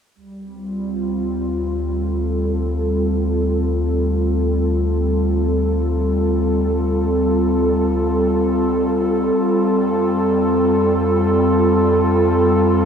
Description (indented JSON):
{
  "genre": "ambient",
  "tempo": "free time",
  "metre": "none",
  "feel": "none",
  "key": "unclear",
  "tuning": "A4 = 440 Hz",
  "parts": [
    { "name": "airy breathy pad", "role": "sustained chords", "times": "0.2-12.9 s", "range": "G3 to A4", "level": "-17 LUFS", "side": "equal", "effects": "chorus" },
    { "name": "warm sub bass", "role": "bass", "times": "0.2-12.9 s", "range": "D2 to F2", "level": "-22 LUFS", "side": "equal", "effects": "none" }
  ],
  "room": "wet plate reverb, RT60 2.3 s",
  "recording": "dreamy mix soaked in reverb, cassette tape",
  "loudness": "-16 LUFS",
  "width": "side -7 dB against mid",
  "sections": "0.2-12.9 A section",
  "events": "filter sweep on analog synth pad 0.2-12.9",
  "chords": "0.2 Dm; 9.4 F"
}